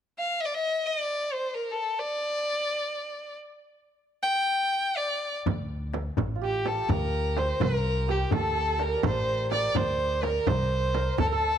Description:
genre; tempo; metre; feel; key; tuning
Persian modal ensemble; 84 BPM (dotted quarters); 6/8; straight; D dastgah shur; A4 = 440 Hz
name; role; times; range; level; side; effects
rich violin; melody; 0.2-11.6 s; G4 to G5; -27 LUFS; left 1 dB; none
upright bass; bass; 5.5-11.6 s; A1 to D2; -30 LUFS; left 1 dB; none
frame drum; percussion; 5.5-11.3 s; none; -32 LUFS; right 8 dB; none
tombak; percussion; 5.5-11.3 s; none; -32 LUFS; left 6 dB; none
santur; second line; 6.4-11.6 s; F4 to D5; -32 LUFS; right 9 dB; none
room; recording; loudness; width
light reverb, small room ambience; 1960s-style stereo with parts hard left and right; -25 LUFS; side -9 dB against mid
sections
0.0-5.5 A section; 5.5-11.6 B section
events
none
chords
none

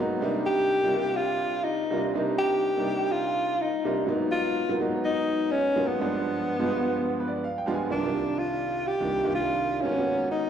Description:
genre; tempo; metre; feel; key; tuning
jazz; 125 BPM; 4/4; swing 54% on 16ths; unclear; A4 = 440 Hz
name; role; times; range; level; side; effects
clear grand piano; accompaniment; 0.0-10.5 s; C2 to Ab5; -28 LUFS; right 2 dB; slapback echo
breathy alto saxophone; melody; 0.5-10.5 s; Cb4 to G4; -26 LUFS; left 1 dB; slapback echo, tape echo
room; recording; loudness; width
moderate club reverb, RT60 0.6 s; live gig heard through the venue's PA, recital hall reverb; -24 LUFS; side -8 dB against mid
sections
0.0-7.9 A section; 7.9-10.5 B section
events
grand piano fill 7.0-7.9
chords
0.2 Cm9; 4.1 Abm9; 6.0 G7b9; 7.9 Cm11; 9.8 Abm11

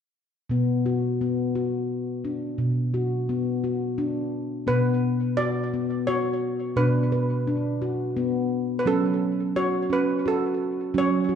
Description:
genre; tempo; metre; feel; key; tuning
world meditative, meditative tuned percussion; 86 BPM; 3/4; swing 53% on 16ths; B minor; A4 = 440 Hz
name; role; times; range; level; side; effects
handpan; arpeggios; 0.5-11.4 s; B2 to B4; -23 LUFS; equal; none
steel pan; melody; 4.7-11.4 s; A4 to D5; -28 LUFS; right 1 dB; tape echo
room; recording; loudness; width
wet scoring stage reverb, RT60 1.6 s, studio ambience; dark, warm production, nothing above 10.7 kHz; -23 LUFS; side -8 dB against mid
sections
0.5-4.7 A section; 4.7-11.4 B section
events
none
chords
0.5 Bm; 8.9 F#m

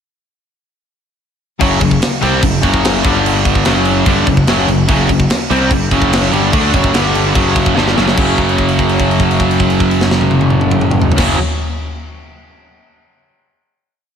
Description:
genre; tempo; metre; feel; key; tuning
heavy metal; 146 BPM; 4/4; straight; unclear; A4 = 440 Hz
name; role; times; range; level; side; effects
distorted electric guitar; riff; 1.6-11.4 s; F#2 to D4; -17 LUFS; right 9 dB; overdrive
distorted electric guitar; riff; 1.6-11.4 s; F#2 to D4; -19 LUFS; right 1 dB; distortion, slapback echo
sludgy distorted guitar; riff; 1.6-11.4 s; F#2 to D4; -17 LUFS; left 8 dB; overdrive
fuzz picked electric bass; bass; 1.6-11.4 s; F#1 to D2; -18 LUFS; equal; overdrive
tight metal drum kit; drums; 1.6-11.3 s; crash cymbal, kick drum, snare drum, toms; -16 LUFS; equal; none
room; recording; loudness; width
moderate concert hall reverb, RT60 2.3 s; big arena sound; -10 LUFS; side -8 dB against mid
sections
1.6-8.2 riff; 8.2-11.4 final chord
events
drum fill 7.8-8.2; held note 8.2-11.2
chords
1.6 F#5; 3.0 G5; 3.6 F#m; 6.9 G5; 7.3 F#5

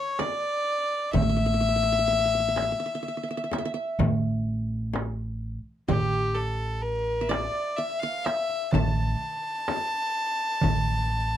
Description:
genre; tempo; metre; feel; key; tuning
Arabic maqam ensemble; 126 BPM (eighths); 10/8; straight; A maqam hijaz; A4 = 442 Hz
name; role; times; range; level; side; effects
warm violin; melody; 0.0-11.4 s; G4 to A5; -27 LUFS; left 3 dB; none
qanun; second line; 0.0-11.4 s; G4 to A5; -33 LUFS; right 3 dB; none
darbuka; percussion; 0.2-10.8 s; none; -30 LUFS; right 5 dB; none
frame drum; percussion; 0.2-10.9 s; none; -30 LUFS; left 6 dB; none
upright bass; bass; 1.1-11.4 s; A1; -27 LUFS; right 1 dB; none
room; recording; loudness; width
light reverb; dark, warm production; -24 LUFS; side -11 dB against mid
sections
0.0-11.4 A section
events
none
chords
none

